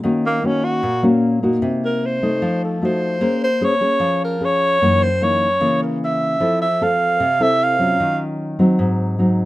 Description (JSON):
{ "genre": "bossa nova", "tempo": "151 BPM", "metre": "4/4", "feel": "straight", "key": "unclear", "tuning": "A4 = 440 Hz", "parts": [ { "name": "nylon-string guitar", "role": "accompaniment", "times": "0.0-9.5 s", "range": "Gb2 to C5", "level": "-18 LUFS", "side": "left 1 dB", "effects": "none" }, { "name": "breathy alto saxophone", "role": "melody", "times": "0.3-8.2 s", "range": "Bb3 to F5", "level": "-18 LUFS", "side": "right 1 dB", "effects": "none" } ], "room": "little or no reverb", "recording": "close, detailed microphones", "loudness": "-16 LUFS", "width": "side -17 dB against mid", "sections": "0.0-9.5 A section", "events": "alto saxophone solo 0.0-9.5", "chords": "0.0 Ebm7; 1.6 Cm7b5; 2.4 F7b9; 3.2 Bbm9; 4.8 Gb6; 6.4 Fmaj7; 8.0 Ebm9; 8.8 Ab7", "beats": "| 0.03 0.43 0.83 1.23 | 1.62 2.02 2.42 2.82 | 3.22 3.62 4.01 4.41 | 4.81 5.21 5.61 6.00 | 6.40 6.80 7.20 7.60 | 8.00 8.39 8.79 9.19" }